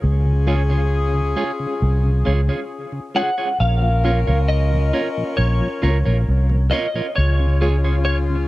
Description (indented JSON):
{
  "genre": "reggae",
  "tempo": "67 BPM",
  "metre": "4/4",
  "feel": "straight",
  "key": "Db major",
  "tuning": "A4 = 439 Hz",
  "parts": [
    { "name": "warm horn section", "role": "second line", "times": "0.0-8.5 s", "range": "Ab3 to Bb4", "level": "-26 LUFS", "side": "left 4 dB", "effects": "dub echo" },
    { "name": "vintage muted fingered electric bass", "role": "bass", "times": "0.0-8.5 s", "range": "Bb1 to Db2", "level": "-17 LUFS", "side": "equal", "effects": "none" },
    { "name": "mellow tonewheel organ", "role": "accompaniment", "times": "0.3-8.4 s", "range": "Bb2 to F4", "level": "-28 LUFS", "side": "left 1 dB", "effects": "slow rotary speaker, dub echo" },
    { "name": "clean electric guitar", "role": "accompaniment", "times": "0.5-8.0 s", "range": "F4 to Db5", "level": "-27 LUFS", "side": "right 4 dB", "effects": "dub echo" },
    { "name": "clean electric guitar", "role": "melody", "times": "3.2-8.2 s", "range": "Db5 to Gb5", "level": "-24 LUFS", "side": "equal", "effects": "ensemble chorus, dub echo" }
  ],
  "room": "little or no reverb",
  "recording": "dry, close 1970s-style studio recording",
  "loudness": "-16 LUFS",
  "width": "side -18 dB against mid",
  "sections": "0.0-8.5 A section",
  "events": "none",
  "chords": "0.0 Db; 3.6 Bbm; 7.2 Db"
}